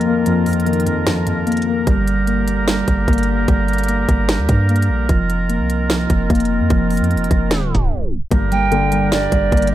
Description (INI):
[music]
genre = hip hop, trap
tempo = 149 BPM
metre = 4/4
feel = half-time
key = G minor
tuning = A4 = 440 Hz
[part]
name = dark concert grand piano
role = accompaniment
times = 0.0-1.9, 8.3-9.7 s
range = F2 to Bb3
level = -21 LUFS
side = left 2 dB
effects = none
[part]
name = mellow woodwind section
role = sustained chords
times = 0.0-9.7 s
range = D3 to Bb4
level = -23 LUFS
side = right 4 dB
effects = none
[part]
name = muted felt-like synth keys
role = arpeggios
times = 0.0-9.7 s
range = F3 to Bb3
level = -20 LUFS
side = left 2 dB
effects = chorus, ping-pong delay
[part]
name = trap drum kit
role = drums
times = 0.0-9.7 s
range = hi-hat, kick drum, snare drum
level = -19 LUFS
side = equal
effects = none
[part]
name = warm 808-style bass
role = bass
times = 1.9-9.7 s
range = F1 to G2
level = -19 LUFS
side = equal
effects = none
[part]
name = bright polished pan flute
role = second line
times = 8.5-9.7 s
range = D5 to G5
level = -18 LUFS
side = right 4 dB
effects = ping-pong delay
[sound]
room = studio reverb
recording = tape stop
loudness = -14 LUFS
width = side -13 dB against mid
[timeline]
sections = 0.0-8.3 A section; 8.3-9.7 B section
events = break 0.0-1.9; tape stop 7.5-8.3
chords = 0.0 F7sus4; 1.9 Gm; 5.1 F7sus4; 8.3 Gm